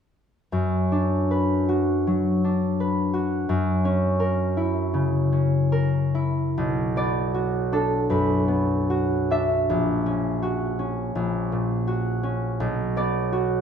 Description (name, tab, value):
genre	classical, solo harp piece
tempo	68-86 BPM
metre	4/4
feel	rubato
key	B minor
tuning	A4 = 440 Hz
part	concert harp	solo	0.5-13.6 s	A#1 to E5	-21 LUFS	equal	none
room	wet recital hall reverb, RT60 1.6 s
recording	none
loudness	-21 LUFS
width	side -7 dB against mid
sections	0.5-6.6 A section; 6.6-13.6 B section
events	none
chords	0.5 Bm/F#; 3.5 F#7; 6.6 Bm; 9.7 F#7/A#; 12.6 Bm